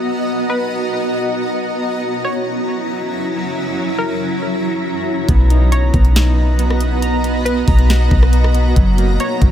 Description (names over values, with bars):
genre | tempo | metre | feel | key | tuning
hip hop, atmospheric cloud-rap | 138 BPM | 4/4 | half-time | B major | A4 = 439 Hz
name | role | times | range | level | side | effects
granular cloud pad | sustained chords | 0.0-9.5 s | F#3 to A#5 | -19 LUFS | equal | built-in reverb, sidechain pumping
glassy wavetable pluck | melody | 0.5-9.5 s | A#4 to C#5 | -25 LUFS | left 1 dB | chorus, low-pass filter, digital delay
warbly lo-fi synth keys | arpeggios | 5.3-9.5 s | F#3 to A#5 | -24 LUFS | right 2 dB | chorus, low-pass filter, digital delay
soft 808-style bass | bass | 5.3-9.5 s | F#1 to B1 | -13 LUFS | equal | none
trap drum kit | drums | 5.3-9.5 s | hi-hat, kick drum, rim click, snare drum | -16 LUFS | equal | none
twinkling granular texture | texture | 5.9-9.5 s | F#3 to B4 | -30 LUFS | equal | built-in reverb
room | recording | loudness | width
light reverb, digital ambience | none | -14 LUFS | side -10 dB against mid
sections
0.0-9.5 A section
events
none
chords
0.0 Bmaj7; 1.8 F#7; 5.3 Bmaj7; 8.8 F#7